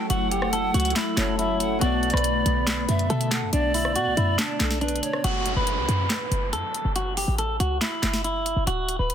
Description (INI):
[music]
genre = hip hop, trap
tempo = 140 BPM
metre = 4/4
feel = half-time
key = F# minor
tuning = A4 = 442 Hz
[part]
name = clean electric guitar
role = melody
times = 0.0-9.1 s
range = D4 to B4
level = -27 LUFS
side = equal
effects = lush chorus
[part]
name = breathy bright pan flute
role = second line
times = 0.0-5.2 s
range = A4 to F#5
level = -30 LUFS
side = right 3 dB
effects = ping-pong delay
[part]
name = Celtic harp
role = accompaniment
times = 0.0-5.3 s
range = B2 to D5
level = -34 LUFS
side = left 4 dB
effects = none
[part]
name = airy breathy pad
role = sustained chords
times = 0.0-5.2 s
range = D3 to A4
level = -31 LUFS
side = left 1 dB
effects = chorus
[part]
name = short 808-style bass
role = bass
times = 0.1-9.1 s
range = D1 to B2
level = -26 LUFS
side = equal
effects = none
[part]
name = trap drum kit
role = drums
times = 0.1-9.1 s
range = handclaps, hi-hat, rim click, snare drum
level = -27 LUFS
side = equal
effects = none
[part]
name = downlifter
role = sound effects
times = 5.2-8.7 s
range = none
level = -33 LUFS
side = equal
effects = none
[sound]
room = digital ambience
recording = dense, heavily limited modern master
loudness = -21 LUFS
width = side -9 dB against mid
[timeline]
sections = 0.0-5.2 A section; 5.2-9.1 B section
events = none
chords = 0.0 F#m7; 1.8 Bm; 5.2 F#7(no3)